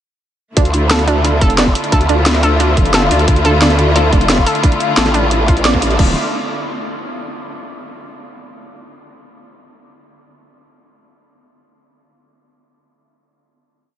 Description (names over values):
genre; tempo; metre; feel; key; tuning
dark technical drum and bass; 177 BPM; 4/4; straight; D minor; A4 = 439 Hz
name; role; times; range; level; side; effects
rich studio string section; sustained chords; 0.6-6.1 s; D3 to F4; -18 LUFS; left 2 dB; sidechain pumping
analog pluck; arpeggios; 0.6-6.1 s; D4 to D5; -20 LUFS; right 3 dB; chorus, sidechain pumping, diffuse ambient delay
growl bass; bass; 0.6-6.1 s; D1 to D2; -15 LUFS; equal; chorus, overdrive, sidechain pumping
drum and bass drum kit; drums; 0.6-6.1 s; crash cymbal, hi-hat, snare drum; -18 LUFS; equal; none
electronic kick drum; drums; 0.6-6.1 s; none; -14 LUFS; equal; none
room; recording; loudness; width
moderate cathedral reverb, RT60 7.0 s; dreamy mix soaked in reverb, nothing above 10.6 kHz; -11 LUFS; side -10 dB against mid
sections
0.6-6.0 drop; 6.0-7.3 final chord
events
drop 0.6-6.0; band accent 5.7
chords
0.6 Dmadd9; 6.0 N.C.